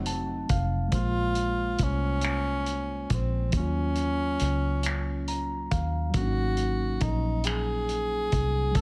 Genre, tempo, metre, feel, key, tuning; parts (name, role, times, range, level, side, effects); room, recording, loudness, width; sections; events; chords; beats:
slow six-eight R&B; 46 BPM (dotted quarters); 6/8; straight; Bb minor; A4 = 442 Hz
breathy tenor saxophone; melody; 0.0-8.8 s; C4 to A4; -33 LUFS; equal
mellow tine electric piano; accompaniment; 0.0-8.8 s; F3 to Bb5; -35 LUFS; equal
vintage muted fingered electric bass; bass; 0.0-8.8 s; F1 to Eb2; -32 LUFS; equal
cloth-damped thuddy drum kit; drums; 0.1-8.8 s; finger snaps, hi-hat, kick drum; -32 LUFS; equal
little or no reverb; -28 LUFS; mono
0.9-8.8 A section
tine electric piano fill 0.0-0.9, 4.8-6.1
0.0 F7b9; 0.9 Bbm9; 3.5 Ebm9; 6.1 Ab9sus4
| 0.92 2.23 | 3.53 4.83 | 6.14 7.44 | 8.75